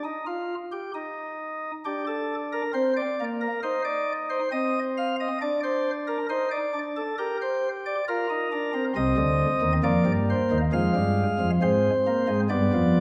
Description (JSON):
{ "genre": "classical, baroque-style 3-part fugue for pipe organ", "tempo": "67 BPM", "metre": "4/4", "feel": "straight", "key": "C minor", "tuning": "A4 = 440 Hz", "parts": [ { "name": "chamber organ, sparkling flutes", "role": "solo", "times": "0.0-13.0 s", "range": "C2 to F5", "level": "-26 LUFS", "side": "equal", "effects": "none" } ], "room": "wet recital hall reverb, RT60 1.8 s", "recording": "none", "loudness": "-26 LUFS", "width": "mono", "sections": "0.0-13.0 A section", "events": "none", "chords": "0.0 N.C.; 1.8 Gm/D; 3.6 Cm/Eb; 5.4 D5; 7.2 Cm; 10.7 Fm", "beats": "0.06 0.95 | 1.85 2.74 3.63 4.51 | 5.40 6.29 7.18 8.07 | 8.96 9.85 10.74 11.64 | 12.53" }